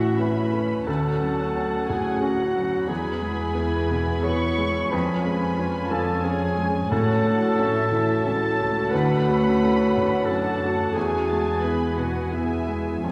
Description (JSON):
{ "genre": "cinematic", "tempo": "89 BPM", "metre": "3/4", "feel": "rubato", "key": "unclear", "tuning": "A4 = 443 Hz", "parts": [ { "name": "muted studio violin section", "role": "melody", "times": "0.0-13.1 s", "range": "E5 to B5", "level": "-38 LUFS", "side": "equal", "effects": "none" }, { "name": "mellow clarinet", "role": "second line", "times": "0.0-13.1 s", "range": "E4 to C#5", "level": "-29 LUFS", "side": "equal", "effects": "none" }, { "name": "muted symphonic violin section", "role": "second line", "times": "0.0-13.1 s", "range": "E5 to C#6", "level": "-34 LUFS", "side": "equal", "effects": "none" }, { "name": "felt-muted upright piano", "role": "accompaniment", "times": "0.0-13.1 s", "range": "D2 to C#4", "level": "-31 LUFS", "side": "equal", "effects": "none" }, { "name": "muted symphonic viola section", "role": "accompaniment", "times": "0.0-13.1 s", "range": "A3 to B4", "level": "-35 LUFS", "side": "equal", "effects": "none" }, { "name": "warm French horn section", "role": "sustained chords", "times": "0.0-13.1 s", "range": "E#3 to C#5", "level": "-31 LUFS", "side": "equal", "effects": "none" }, { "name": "concert harp", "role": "arpeggios", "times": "0.0-13.1 s", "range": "A2 to B5", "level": "-34 LUFS", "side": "equal", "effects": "none" }, { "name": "muted studio cello section", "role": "bass", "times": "0.0-13.1 s", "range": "C#2 to A2", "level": "-30 LUFS", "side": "equal", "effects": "none" } ], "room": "wet scoring stage reverb, RT60 1.9 s", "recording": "heard from further back in the room", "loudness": "-23 LUFS", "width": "mono", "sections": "0.0-13.1 A section", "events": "none", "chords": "0.0 A6; 0.9 Dmaj7; 2.9 E; 4.9 C#/E#; 6.9 A6; 8.9 Dmaj7; 11.0 E", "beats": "0.18 | 0.88 1.55 2.23 | 2.90 3.56 4.26 | 4.93 5.59 6.24 | 6.91 7.58 8.26 | 8.93 9.61 10.28 | 10.95 11.63 12.32 | 13.04" }